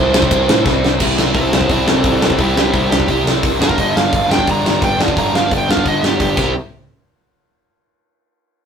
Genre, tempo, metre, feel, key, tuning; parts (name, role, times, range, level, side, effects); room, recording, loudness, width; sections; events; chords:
punk rock; 173 BPM; 4/4; straight; C major; A4 = 440 Hz
biting lead guitar; melody; 0.0-6.5 s; C4 to Bb5; -18 LUFS; right 1 dB; overdrive
biting overdriven guitar; riff; 0.0-6.5 s; G2 to E4; -17 LUFS; equal
fuzz picked electric bass; bass; 0.0-6.5 s; G1 to A2; -21 LUFS; left 1 dB; overdrive
big rock drum kit; drums; 0.1-6.5 s; crash cymbal, hi-hat, kick drum, ride cymbal, snare drum; -17 LUFS; equal
light reverb; rough rehearsal-room recording, tube saturation; -12 LUFS; side -7 dB against mid
0.0-1.0 A section; 1.0-6.5 B section; 6.5-7.9 C section
drum fill 0.7-1.0, 6.4; lead electric guitar solo 1.0-6.5
0.0 C; 3.6 G; 6.4 C; 6.5 N.C.